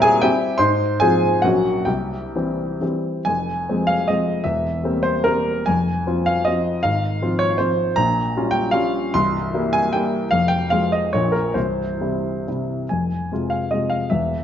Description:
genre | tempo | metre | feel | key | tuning
classical, romantic triple-time dance for piano with dotted rhythms | 123-172 BPM | 3/4 | rubato | F minor | A4 = 439 Hz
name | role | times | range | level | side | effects
warm baby grand piano | solo | 0.0-14.4 s | C1 to C6 | -18 LUFS | equal | none
room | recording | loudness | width
moderate recital hall reverb, RT60 1.4 s | nothing above 7.5 kHz | -18 LUFS | side -9 dB against mid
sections
0.0-3.3 A section; 3.3-12.9 B section; 12.9-14.4 B section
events
none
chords
0.0 C7/Bb; 0.6 Fm/Ab; 1.4 Gb/Bb; 1.9 C; 3.3 Fm; 4.5 C7/E; 5.7 Fm; 6.8 Fm/Ab; 8.0 Gm7b5/Bb; 9.1 C7; 10.3 Fm; 11.1 Bbm; 11.6 C; 12.9 Fm

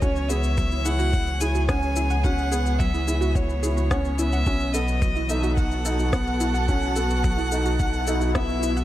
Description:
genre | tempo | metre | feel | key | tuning
piano and strings electronica | 108 BPM | 4/4 | straight | unclear | A4 = 440 Hz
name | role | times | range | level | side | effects
rich violin | melody | 0.0-8.8 s | C#5 to G#5 | -29 LUFS | equal | none
dark studio string section | sustained chords | 0.0-8.8 s | E3 to C#5 | -32 LUFS | equal | sidechain pumping
warbly dusty pluck | arpeggios | 0.0-8.8 s | F#3 to F#5 | -32 LUFS | right 3 dB | chorus, sidechain pumping, digital delay
felt-muted upright piano | riff | 0.0-8.8 s | B3 to E4 | -29 LUFS | equal | none
warm sub bass | bass | 0.0-8.8 s | B1 to C#2 | -25 LUFS | equal | sidechain pumping
electronic kick drum | drums | 0.0-8.5 s | none | -24 LUFS | equal | none
electronic shaker and rim click | drums | 0.0-8.8 s | none | -33 LUFS | left 3 dB | none
swell | sound effects | 8.0-8.8 s | none | -30 LUFS | left 4 dB | none
room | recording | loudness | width
small room ambience | none | -21 LUFS | side -14 dB against mid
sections
0.0-8.8 A section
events
swell 8.0-8.8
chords
0.0 C#m7; 4.5 B7sus4

